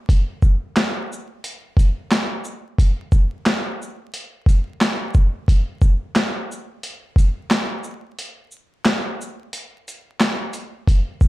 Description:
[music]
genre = hip hop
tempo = 89 BPM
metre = 4/4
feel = swing 58% on 16ths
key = none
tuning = none
[part]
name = boom bap sampler-style drum kit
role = drums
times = 0.1-11.3 s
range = handclaps, hi-hat, kick drum, shaker, snare drum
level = -17 LUFS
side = equal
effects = none
[sound]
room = light reverb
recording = dark, warm production, vinyl crackle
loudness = -18 LUFS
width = side -18 dB against mid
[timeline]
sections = 0.1-11.3 A section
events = break 8.2-10.9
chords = none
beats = | 0.09 0.76 1.44 2.11 | 2.79 3.46 4.13 4.81 | 5.48 6.16 6.83 7.50 | 8.18 8.85 9.53 10.20 | 10.88

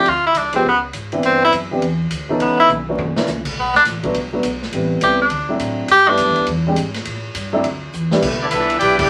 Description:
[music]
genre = jazz, big band swing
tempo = 206 BPM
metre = 4/4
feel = swing 62% on 8ths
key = G major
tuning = A4 = 440 Hz
[part]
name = edgy tenor saxophone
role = melody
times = 0.0-6.5 s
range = B3 to G4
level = -16 LUFS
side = equal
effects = none
[part]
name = warm upright piano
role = accompaniment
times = 0.0-8.2 s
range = E3 to A4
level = -22 LUFS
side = equal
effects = none
[part]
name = upright bass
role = bass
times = 0.0-9.1 s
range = D1 to A2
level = -28 LUFS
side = equal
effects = none
[part]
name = swinging big-band drum kit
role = drums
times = 0.1-9.0 s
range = crash cymbal, hi-hat, kick drum, ride cymbal, snare drum, toms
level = -29 LUFS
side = equal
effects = none
[part]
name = mellow saxophone section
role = sustained chords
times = 8.2-8.7 s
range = A3 to B4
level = -30 LUFS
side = equal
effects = none
[part]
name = warm trumpet section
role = melody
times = 8.4-9.1 s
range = B3 to G5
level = -18 LUFS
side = equal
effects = none
[part]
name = clear trombone section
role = second line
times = 8.4-9.1 s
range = E3 to G4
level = -22 LUFS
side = equal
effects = none
[sound]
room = wet small room ambience, RT60 0.5 s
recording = vinyl crackle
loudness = -18 LUFS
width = mono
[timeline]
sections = 0.0-8.2 A section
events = tenor saxophone solo 0.0-8.2; drum fill 2.7-3.3, 7.9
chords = 0.1 Dm7; 0.6 C#5; 1.2 Cmaj9; 2.4 Bm11; 3.0 F#7b13; 3.6 Bm7; 4.7 Am7; 5.3 D7; 5.9 G69; 6.5 E7alt; 7.1 Am7; 7.6 Dsus2; 8.2 G69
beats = | 0.07 0.36 0.65 0.94 | 1.23 1.52 1.82 2.11 | 2.40 2.69 2.98 3.27 | 3.57 3.86 4.15 4.44 | 4.73 5.02 5.31 5.61 | 5.90 6.19 6.48 6.77 | 7.06 7.35 7.64 7.94 | 8.23 8.52 8.81

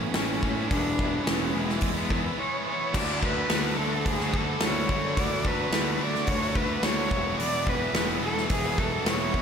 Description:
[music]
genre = quiet-loud alternative rock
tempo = 108 BPM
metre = 4/4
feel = straight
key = unclear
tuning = A4 = 440 Hz
[part]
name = warm cello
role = melody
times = 0.0-9.4 s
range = G#3 to D5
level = -30 LUFS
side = equal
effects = slapback echo
[part]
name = glass harmonica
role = sustained chords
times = 0.0-9.4 s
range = D4 to F#6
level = -41 LUFS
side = right 2 dB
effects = none
[part]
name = heavy high-gain guitar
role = riff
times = 0.0-9.4 s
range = A2 to F#4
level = -34 LUFS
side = right 12 dB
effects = distortion, slapback echo
[part]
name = high-gain distorted guitar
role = riff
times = 0.0-9.4 s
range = A2 to E4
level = -34 LUFS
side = left 11 dB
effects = distortion, slapback echo
[part]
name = fuzz picked electric bass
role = bass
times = 0.0-9.4 s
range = E1 to D3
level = -32 LUFS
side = equal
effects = overdrive
[part]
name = big rock drum kit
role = drums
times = 0.1-9.4 s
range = crash cymbal, hi-hat, kick drum, snare drum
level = -28 LUFS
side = equal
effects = none
[part]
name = distorted electric guitar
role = riff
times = 2.9-9.4 s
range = E2 to D4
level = -36 LUFS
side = equal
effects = overdrive, slapback echo
[sound]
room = moderate lush hall reverb, RT60 1.7 s, small room ambience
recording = big arena sound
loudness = -24 LUFS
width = side -7 dB against mid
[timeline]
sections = 0.0-2.9 A section; 2.9-9.4 A section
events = none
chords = 0.0 Amaj7; 0.7 E; 2.9 D6; 7.1 Esus2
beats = 0.16 | 0.72 1.28 1.83 2.39 | 2.95 3.51 4.06 4.62 | 5.17 5.73 6.29 6.84 | 7.40 7.96 8.51 9.07

